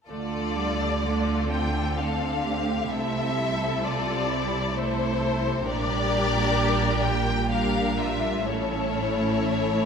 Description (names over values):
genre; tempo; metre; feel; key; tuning
classical, slow romantic movement for string orchestra; 65 BPM; 3/4; uneven beats, rubato; D minor; A4 = 441 Hz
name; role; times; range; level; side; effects
rich studio violin section; melody; 0.1-9.9 s; C5 to G5; -28 LUFS; left 4 dB; none
rich studio violin section; second line; 0.1-9.9 s; D4 to Bb4; -30 LUFS; left 2 dB; none
rich studio viola section; accompaniment; 0.1-9.9 s; G3 to D4; -29 LUFS; right 2 dB; none
rich studio cello section; bass; 0.1-9.9 s; A2 to D3; -32 LUFS; right 3 dB; none
warm studio double bass section; bass; 0.1-9.9 s; A1 to D2; -30 LUFS; right 3 dB; none
room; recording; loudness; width
wet concert hall reverb, RT60 2.4 s; none; -23 LUFS; side -6 dB against mid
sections
0.1-9.9 A section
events
none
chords
0.1 Dm; 2.9 Am/C; 5.7 Gm/Bb; 8.4 A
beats
| 0.09 1.05 1.98 | 2.91 3.85 4.76 | 5.67 6.57 7.49 | 8.45 9.42